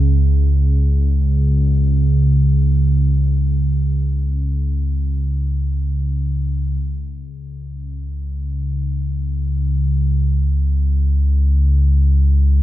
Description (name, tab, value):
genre	ambient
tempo	free time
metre	none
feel	none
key	unclear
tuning	A4 = 441 Hz
part	deep rumbling drone	solo	0.0-12.6 s	C#2 to C#3	-15 LUFS	equal	built-in reverb
room	light reverb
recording	none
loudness	-15 LUFS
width	side -14 dB against mid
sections	0.0-6.8 A section; 6.8-12.6 B section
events	none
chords	none